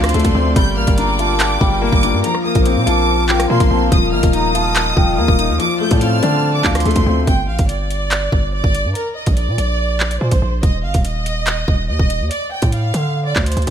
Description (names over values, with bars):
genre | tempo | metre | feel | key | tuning
hip hop, drill | 143 BPM | 4/4 | half-time | unclear | A4 = 439 Hz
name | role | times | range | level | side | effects
warm studio violin section | melody | 0.0-13.7 s | Bb4 to G6 | -21 LUFS | right 1 dB | none
mellow hollow concert flute | second line | 0.0-6.8 s | F5 to Bb5 | -24 LUFS | right 4 dB | digital delay
felt-muted upright piano | accompaniment | 0.0-7.3 s | F3 to F4 | -19 LUFS | left 5 dB | none
warm chamber string section | sustained chords | 0.0-7.3 s | F4 to A5 | -25 LUFS | left 4 dB | none
distorted 808-style bass | bass | 0.0-13.7 s | Eb1 to D3 | -19 LUFS | right 1 dB | distortion
drill drum kit | drums | 0.0-13.7 s | handclaps, hi-hat, kick drum, rim click | -17 LUFS | right 1 dB | none
room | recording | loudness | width
light reverb | none | -14 LUFS | side -9 dB against mid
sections
0.0-7.3 A section; 7.3-13.7 B section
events
none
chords
0.0 Dm7; 0.6 Gm7; 2.2 Bbsus2; 3.9 Ebsus2; 5.6 Dm7; 7.3 G5; 9.0 Bbsus2; 10.6 N.C.; 12.3 Dm